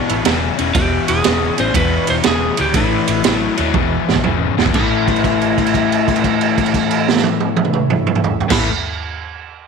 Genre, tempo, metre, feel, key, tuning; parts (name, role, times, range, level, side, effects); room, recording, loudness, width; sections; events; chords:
blues rock power trio and southern rock; 120 BPM; 4/4; swing 67% on 8ths; A major; A4 = 439 Hz
crunchy overdriven guitar; riff; 0.0-8.7 s; E2 to A3; -18 LUFS; left 14 dB; spring reverb
overdriven tonewheel organ; sustained chords; 0.1-8.7 s; G#3 to G#5; -29 LUFS; right 10 dB; chorus vibrato, slow rotary speaker
vintage muted fingered electric bass; bass; 0.1-8.7 s; E1 to E2; -23 LUFS; left 1 dB
raw garage drum kit; drums; 0.1-8.6 s; crash cymbal, kick drum, ride cymbal, snare drum, toms; -17 LUFS; right 6 dB
lightly driven lead guitar; melody; 0.7-8.7 s; E4 to C5; -22 LUFS; right 2 dB; slapback echo
light reverb, small room ambience; 1960s-style stereo with parts hard left and right; -13 LUFS; side -5 dB against mid
0.0-4.7 A section; 4.7-8.7 B section
tonewheel organ fill 0.0-0.8; drum fill 3.7-4.7; held note 4.7-8.4
0.0 E; 2.7 A; 3.7 E; 4.7 A